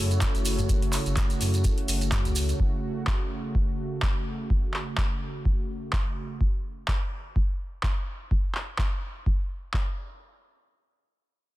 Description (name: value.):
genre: acid house.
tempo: 126 BPM.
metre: 4/4.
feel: swing 55% on 16ths.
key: F# minor.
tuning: A4 = 443 Hz.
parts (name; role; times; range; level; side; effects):
warm analog pad; sustained chords; 0.0-6.4 s; C#3 to F#4; -33 LUFS; right 1 dB; chorus, sidechain pumping.
warm sub bass; bass; 0.0-2.5 s; F#1 to F#2; -27 LUFS; equal; tube saturation, sidechain pumping.
airy breathy pad; texture; 0.0-2.6 s; E4 to C#5; -38 LUFS; equal; chorus, sidechain pumping.
booming analog drum machine; drums; 0.1-9.8 s; handclaps, hi-hat, toms; -33 LUFS; equal; none.
maracas; percussion; 0.1-2.6 s; none; -34 LUFS; right 4 dB; none.
electronic kick drum; drums; 0.2-9.8 s; none; -26 LUFS; equal; none.
room: digital ambience.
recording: dense, heavily limited modern master.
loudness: -25 LUFS.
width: side -17 dB against mid.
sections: 0.0-10.2 A section.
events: none.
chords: 0.0 F#m.